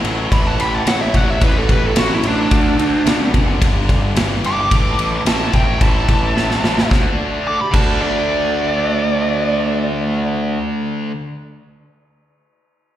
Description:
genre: blues rock power trio and southern rock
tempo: 109 BPM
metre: 4/4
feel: straight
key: D major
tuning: A4 = 440 Hz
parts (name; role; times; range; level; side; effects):
- tonewheel organ; sustained chords; 0.0-9.9 s; C#4 to E5; -32 LUFS; right 4 dB; none
- tight distorted guitar; riff; 0.0-11.1 s; G2 to D4; -22 LUFS; left 1 dB; distortion, slapback echo
- fuzz picked electric bass; bass; 0.0-10.6 s; F#1 to D2; -21 LUFS; equal; overdrive
- big rock drum kit; drums; 0.0-7.9 s; crash cymbal, kick drum, ride cymbal, snare drum; -17 LUFS; equal; none
- dark smooth lead guitar; melody; 0.3-9.9 s; D4 to D6; -20 LUFS; right 1 dB; overdrive, plate reverb, slapback echo, analog delay
- smooth overdriven lead guitar; second line; 0.3-9.9 s; A3 to A5; -27 LUFS; right 4 dB; plate reverb, analog delay
room: light reverb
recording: live gig heard through the venue's PA, recital hall reverb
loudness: -14 LUFS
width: side -12 dB against mid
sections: 0.0-6.9 A section; 6.9-9.1 B section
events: drum fill 6.4-6.9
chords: 0.0 A; 2.5 D; 3.6 G; 4.7 A; 6.9 D

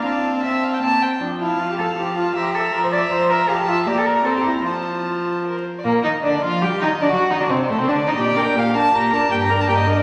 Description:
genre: quick classical-period movement for string quartet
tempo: 156 BPM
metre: 3/4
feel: straight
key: F major, G minor from 5.9 s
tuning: A4 = 440 Hz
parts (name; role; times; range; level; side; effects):
- warm violin; melody; 0.0-10.0 s; A4 to Bb5; -25 LUFS; equal; none
- warm violin; second line; 0.0-10.0 s; A3 to A5; -25 LUFS; equal; none
- warm viola; accompaniment; 0.0-10.0 s; F3 to G4; -26 LUFS; equal; none
- rich cello; bass; 0.0-10.0 s; G2 to D5; -25 LUFS; equal; none
room: wet scoring stage reverb, RT60 2.2 s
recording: vinyl crackle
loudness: -19 LUFS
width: mono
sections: 0.0-5.9 A section; 5.9-10.0 B section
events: none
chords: 0.0 F/C; 0.8 C5; 1.2 F; 2.4 C7/F; 3.5 F; 3.9 Bb; 4.3 C7; 4.7 F; 5.9 Gm/Bb; 7.0 D7; 8.2 Gm/Bb; 9.3 Gm

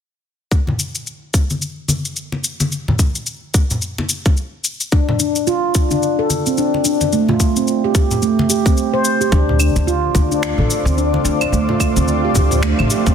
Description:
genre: organic downtempo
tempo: 109 BPM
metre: 4/4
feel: swing 59% on 16ths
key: D minor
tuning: A4 = 440 Hz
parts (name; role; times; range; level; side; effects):
- electronic kick drum; drums; 0.5-13.1 s; none; -15 LUFS; equal; studio reverb
- electronic shaker, claves and finger snaps; drums; 0.5-13.1 s; none; -23 LUFS; left 2 dB; studio reverb, soft clipping on snare
- congas; percussion; 0.7-13.1 s; none; -22 LUFS; left 1 dB; none
- handpan; arpeggios; 4.9-13.1 s; A3 to C5; -17 LUFS; right 1 dB; digital delay
- granular cloud pad; sustained chords; 10.0-13.1 s; A3 to D5; -22 LUFS; equal; built-in reverb, sidechain pumping
- upright bass; bass; 9.3-13.1 s; A1 to D2; -18 LUFS; equal; sidechain pumping
room: moderate scoring stage reverb, RT60 1.8 s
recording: dense, heavily limited modern master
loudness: -15 LUFS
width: side -8 dB against mid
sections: 0.5-9.3 A section; 9.3-13.1 B section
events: none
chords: 0.5 Dm7

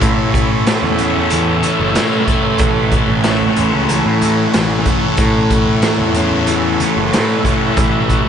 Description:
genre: psychedelic rock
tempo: 93 BPM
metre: 4/4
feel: straight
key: A major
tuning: A4 = 440 Hz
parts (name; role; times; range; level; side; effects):
- combo organ; sustained chords; 0.0-8.3 s; G3 to F#5; -22 LUFS; right 4 dB; none
- thick fuzz guitar; riff; 0.0-8.3 s; A2 to C#4; -15 LUFS; left 1 dB; distortion, phaser, analog delay
- fuzz picked electric bass; bass; 0.0-8.3 s; F#1 to A2; -19 LUFS; equal; overdrive
- raw garage drum kit; drums; 0.0-8.2 s; hi-hat, kick drum, snare drum; -18 LUFS; equal; analog delay
- congas; percussion; 0.3-8.2 s; none; -30 LUFS; right 2 dB; none
room: light reverb, small room ambience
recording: echo-heavy mix, nothing above 10.8 kHz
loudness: -12 LUFS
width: side -8 dB against mid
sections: 0.0-8.3 A section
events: none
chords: 0.0 A; 7.8 Emadd9

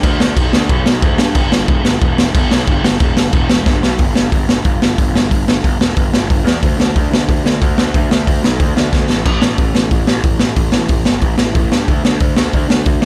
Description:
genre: punk rock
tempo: 182 BPM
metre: 4/4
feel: straight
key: unclear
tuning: A4 = 442 Hz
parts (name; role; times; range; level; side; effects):
- fuzz picked electric bass; bass; 0.0-13.1 s; E1 to G2; -20 LUFS; equal; overdrive
- raw garage drum kit; drums; 0.0-13.1 s; crash cymbal, hi-hat, kick drum, snare drum; -15 LUFS; equal; none
room: little or no reverb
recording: none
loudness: -14 LUFS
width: mono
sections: 0.0-4.0 A section; 4.0-13.1 B section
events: drum fill 3.7-4.0, 8.9-9.2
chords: none

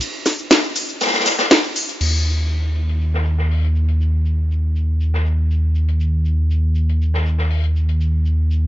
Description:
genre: melodic techno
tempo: 120 BPM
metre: 4/4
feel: straight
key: unclear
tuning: A4 = 442 Hz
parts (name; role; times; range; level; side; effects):
- swinging big-band drum kit; drums; 0.0-8.6 s; hi-hat, shaker, snare drum; -22 LUFS; left 2 dB; high-pass filter on hats, low-pass filter on hats, high-pass filter on snare, low-pass filter on snare, high-pass filter on perc, low-pass filter on perc, high-pass filter on room, low-pass filter on room
- techno drum kit; drums; 0.0-2.1 s; crash cymbal, hi-hat, ride cymbal, shaker, snare drum; -18 LUFS; equal; overdrive
- dark detuned saw bass; bass; 2.0-8.7 s; Eb2; -16 LUFS; equal; none
room: small room ambience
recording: nothing above 7.6 kHz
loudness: -16 LUFS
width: side -15 dB against mid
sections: 0.0-2.0 A section; 2.0-8.7 B section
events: drop 0.0-2.0; break 0.0-2.0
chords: none

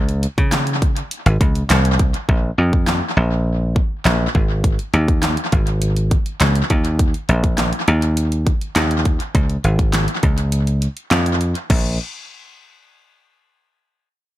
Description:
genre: dance-pop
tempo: 102 BPM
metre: 4/4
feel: straight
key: unclear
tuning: A4 = 440 Hz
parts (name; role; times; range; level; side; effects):
- dry thumbed slap bass; bass; 0.0-12.0 s; Ab1 to Db3; -17 LUFS; equal; sidechain pumping
- pop drum kit; drums; 0.1-11.8 s; crash cymbal, handclaps, hi-hat, kick drum, snare drum; -19 LUFS; equal; tape echo
room: little or no reverb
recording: echo-heavy mix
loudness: -15 LUFS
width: side -15 dB against mid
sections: 0.0-2.3 A section; 2.3-11.7 B section; 11.7-14.1 C section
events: drop 0.0-2.3; kick muted 10.5-11.7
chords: none

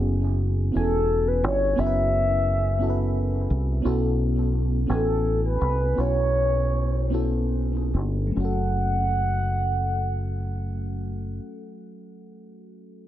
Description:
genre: slow six-eight R&B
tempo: 46-58 BPM (dotted quarters)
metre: 6/8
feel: straight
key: F# minor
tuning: A4 = 440 Hz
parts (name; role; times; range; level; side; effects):
- mellow FM electric piano; accompaniment; 0.0-13.1 s; F#3 to G#5; -29 LUFS; equal; chorus, phaser, tape echo
- deep dub fingered electric bass; bass; 0.0-11.4 s; E1 to B#1; -24 LUFS; equal; none
- mellow horn-like synth lead; melody; 0.8-11.4 s; A4 to F#5; -26 LUFS; left 1 dB; chorus, tape echo
room: light reverb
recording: echo-heavy mix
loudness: -22 LUFS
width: side -12 dB against mid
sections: 0.0-8.3 A section; 8.3-13.1 B section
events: slowing down 3.8-8.3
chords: 0.0 F#9sus4; 3.8 B9sus4; 8.3 F#m

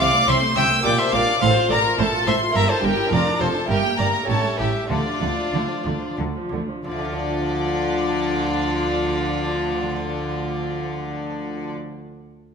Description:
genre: classical, baroque-style concerto movement with solo episodes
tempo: 87-106 BPM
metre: 3/4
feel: straight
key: D minor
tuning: A4 = 441 Hz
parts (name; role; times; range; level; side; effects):
- warm chamber violin section; melody; 0.0-11.7 s; D5 to E6; -25 LUFS; left 1 dB; none
- warm violin; melody; 0.0-11.7 s; F4 to G5; -26 LUFS; left 1 dB; none
- rich chamber violin section; second line; 0.0-11.7 s; D4 to E5; -27 LUFS; left 3 dB; none
- lute; accompaniment; 0.0-12.0 s; F2 to D5; -30 LUFS; right 2 dB; none
- warm chamber viola section; accompaniment; 0.0-11.7 s; F3 to A4; -29 LUFS; right 1 dB; none
- rich chamber double bass section; bass; 0.0-11.7 s; F1 to D2; -28 LUFS; right 4 dB; none
- warm chamber cello section; bass; 0.0-11.7 s; F2 to D3; -27 LUFS; right 2 dB; none
room: wet recital hall reverb, RT60 1.5 s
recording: minimal, uncompressed stereo recording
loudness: -19 LUFS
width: side -6 dB against mid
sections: 0.0-6.9 A section; 6.9-11.0 B section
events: slowing down 2.3-6.9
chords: 0.0 Am/C; 0.8 Gm/Bb; 1.4 F/A; 2.5 Edim/G; 3.1 Dm/F; 3.7 Edim/G; 4.3 A7; 4.9 Dm

